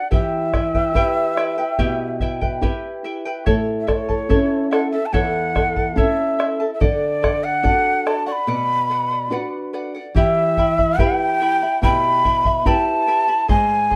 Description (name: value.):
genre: andean folk, Andean ensemble.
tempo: 72 BPM.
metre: 4/4.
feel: straight.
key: unclear.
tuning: A4 = 441 Hz.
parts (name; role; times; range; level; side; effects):
breathy mellow quena; melody; 0.0-14.0 s; C#5 to C#6; -22 LUFS; equal; none.
charango; accompaniment; 0.0-14.0 s; E4 to B5; -27 LUFS; equal; none.
nylon-string guitar; accompaniment; 0.1-14.0 s; E2 to B4; -28 LUFS; equal; none.
bombo; percussion; 0.1-14.0 s; none; -23 LUFS; equal; none.
room: moderate studio reverb, RT60 0.6 s.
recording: none.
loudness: -19 LUFS.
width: mono.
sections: 0.0-10.1 A section; 10.1-14.0 B section.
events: break 8.5-10.1.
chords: 0.1 Em; 3.5 A; 6.8 D; 8.5 Bm; 10.1 Em.